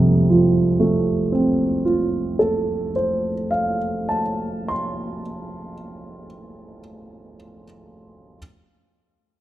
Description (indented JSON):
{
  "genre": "classical, romantic nocturne for solo piano",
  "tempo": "31 BPM (dotted quarters)",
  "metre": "12/8",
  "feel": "rubato",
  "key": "F major",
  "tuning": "A4 = 440 Hz",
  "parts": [
    { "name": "warm baby grand piano", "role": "solo", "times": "0.0-8.4 s", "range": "F1 to C6", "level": "-19 LUFS", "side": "right 1 dB", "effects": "none" }
  ],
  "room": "light reverb",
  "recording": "close, detailed microphones",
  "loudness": "-18 LUFS",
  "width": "side -14 dB against mid",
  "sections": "0.0-6.2 A section",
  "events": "none",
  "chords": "0.0 F"
}